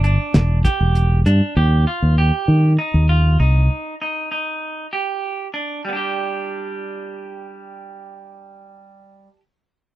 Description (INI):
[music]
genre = progressive instrumental, band music in an uneven meter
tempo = 196 BPM (eighths)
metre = 7/8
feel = straight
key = unclear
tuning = A4 = 440 Hz
[part]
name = clean electric guitar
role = arpeggios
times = 0.0-9.4 s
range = G3 to G4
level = -24 LUFS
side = right 3 dB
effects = none
[part]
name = fingered electric bass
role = bass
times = 0.0-3.7 s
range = E1 to Eb3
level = -14 LUFS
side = equal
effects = none
[part]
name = cloth-damped thuddy drum kit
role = drums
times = 0.0-1.4 s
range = hi-hat, kick drum, snare drum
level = -17 LUFS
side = equal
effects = none
[sound]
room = little or no reverb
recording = dry, close 1970s-style studio recording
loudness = -16 LUFS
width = side -14 dB against mid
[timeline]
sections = 0.0-5.8 A section; 5.8-10.0 B section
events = none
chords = 0.0 G5; 1.6 Eb; 5.8 G5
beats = 0.04 0.35 0.65 0.96 1.26 | 1.57 1.87 2.18 2.48 2.79 3.09 3.40 | 3.71 4.01 4.32 4.62 4.93 5.23 5.54 | 5.84 6.15 6.46 6.76 7.07 7.37 7.68 | 7.98 8.29 8.59 8.90 9.20